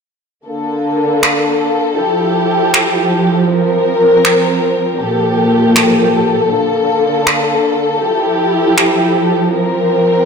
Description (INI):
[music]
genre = future bass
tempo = free time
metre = none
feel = none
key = F major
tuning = A4 = 440 Hz
[part]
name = dark studio string section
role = sustained chords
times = 0.5-10.3 s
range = Bb2 to Bb4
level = -11 LUFS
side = equal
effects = none
[part]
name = electronic finger snaps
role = drums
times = 1.2-8.9 s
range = none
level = -16 LUFS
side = right 1 dB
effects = overdrive
[sound]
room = wet lush hall reverb, RT60 2.0 s, small room ambience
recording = dark, warm production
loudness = -11 LUFS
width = side -5 dB against mid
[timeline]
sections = 0.5-10.3 A section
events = none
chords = 0.5 Bbmaj7; 2.0 Fmaj9; 3.5 C7sus4; 5.0 Gm9/Bb; 6.5 Bbmaj7; 8.0 Fmaj9; 9.5 C7sus4